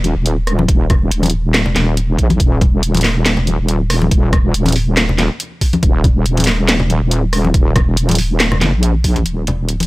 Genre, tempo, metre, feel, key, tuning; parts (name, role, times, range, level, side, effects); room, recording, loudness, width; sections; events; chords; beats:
deep dubstep; 140 BPM; 4/4; swing 55% on 16ths, half-time; A4 = 440 Hz
wobble bass; bass; 0.0-9.9 s; Eb1 to Bb1; -15 LUFS; equal; chorus, tube saturation
garage drum kit; drums; 0.0-9.9 s; hi-hat, rim click, snare drum; -17 LUFS; equal
congas; percussion; 0.0-9.9 s; -20 LUFS; left 2 dB
electronic kick drum; drums; 0.7-9.1 s; -13 LUFS; equal; overdrive
little or no reverb; dry, gritty hardware recording; -12 LUFS; side -20 dB against mid
0.0-9.3 A section
0.26 | 0.69 1.11 1.54 1.97 | 2.40 2.83 3.26 3.69 | 4.11 4.54 4.97 5.40 | 5.83 6.26 6.69 7.11 | 7.54 7.97 8.40 8.83 | 9.26 9.69